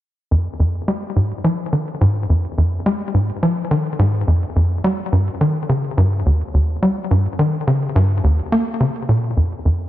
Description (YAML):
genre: ambient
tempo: 106 BPM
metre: 4/4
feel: straight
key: F minor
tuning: A4 = 440 Hz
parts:
  - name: tight sequencer bass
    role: solo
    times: 0.3-9.9 s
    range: Eb2 to Bb3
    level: -16 LUFS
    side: equal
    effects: lush chorus, ping-pong delay
room: moderate plate reverb, RT60 2.6 s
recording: dreamy mix soaked in reverb, cassette tape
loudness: -16 LUFS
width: side -14 dB against mid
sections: 0.3-9.4 A section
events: none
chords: none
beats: | 0.32 0.88 1.45 2.01 | 2.58 3.15 3.71 4.28 | 4.84 5.41 5.97 6.54 | 7.11 7.67 8.24 8.80 | 9.37